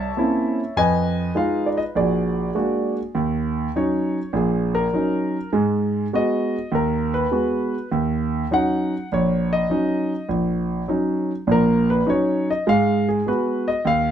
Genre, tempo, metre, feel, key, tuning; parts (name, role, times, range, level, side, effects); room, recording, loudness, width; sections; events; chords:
solo jazz; 101 BPM; 4/4; swing 67% on 8ths; Eb minor; A4 = 440 Hz
warm concert grand piano; solo; 0.0-14.1 s; Bb1 to A5; -19 LUFS; right 1 dB
light reverb; close, detailed microphones; -19 LUFS; side -9 dB against mid
0.0-3.1 A section; 3.1-14.1 B section
grand piano solo 3.1-14.1
0.0 C7b9; 0.8 Fm7b5; 2.0 Bbaug7; 3.1 Ebm7; 5.5 Abm7; 7.9 Ebm7; 12.7 Abm7